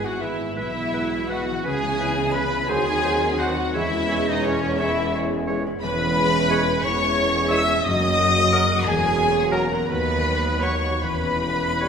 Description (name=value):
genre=classical, slow romantic movement for symphony orchestra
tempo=58 BPM (dotted quarters)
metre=6/8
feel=uneven beats, rubato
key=unclear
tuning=A4 = 439 Hz
part: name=rich symphonic violin section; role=melody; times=0.0-11.9 s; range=C#5 to E6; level=-28 LUFS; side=left 3 dB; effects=none
part: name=bright silver concert flute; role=second line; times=0.0-11.9 s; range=C#5 to E6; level=-29 LUFS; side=left 2 dB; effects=none
part: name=clear oboe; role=second line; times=0.0-11.9 s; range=A#4 to C#5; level=-33 LUFS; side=right 1 dB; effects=none
part: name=rich symphonic violin section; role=second line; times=0.0-11.9 s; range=C#4 to E5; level=-31 LUFS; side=left 2 dB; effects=none
part: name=mellow bassoon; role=accompaniment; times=0.0-11.9 s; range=E3 to G#3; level=-33 LUFS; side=right 2 dB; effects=none
part: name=warm symphonic viola section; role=accompaniment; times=0.0-11.9 s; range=C#4 to E5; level=-28 LUFS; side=right 1 dB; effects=none
part: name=dark trombone section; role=sustained chords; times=0.0-11.9 s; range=C#3 to G#3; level=-30 LUFS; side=right 4 dB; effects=none
part: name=mellow French horn section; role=sustained chords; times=0.0-11.9 s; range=A#3 to Gb4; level=-30 LUFS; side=left 5 dB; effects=none
part: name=concert harp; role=arpeggios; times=0.0-11.9 s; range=F#2 to C#6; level=-33 LUFS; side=left 6 dB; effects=none
part: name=bright trumpet section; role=stabs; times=0.0-11.9 s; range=C#4 to E5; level=-28 LUFS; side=right 1 dB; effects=none
part: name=dark studio double bass section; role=bass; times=0.0-11.9 s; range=E1 to Eb2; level=-30 LUFS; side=right 3 dB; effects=none
part: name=warm symphonic cello section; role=bass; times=0.0-11.9 s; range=D#2 to Eb3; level=-30 LUFS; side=right 2 dB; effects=none
part: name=timpani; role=percussion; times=7.9-8.8 s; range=F#2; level=-36 LUFS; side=left 2 dB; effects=none
room=wet scoring stage reverb, RT60 1.5 s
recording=minimal, uncompressed stereo recording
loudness=-19 LUFS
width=side -6 dB against mid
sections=0.0-11.9 A section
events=none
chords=0.0 E/G#; 1.7 C#m7; 2.7 Cdim/Eb; 3.8 C#m/E; 7.9 F#; 8.9 F#7/E; 9.9 B/D#; 11.0 C#m7b5/E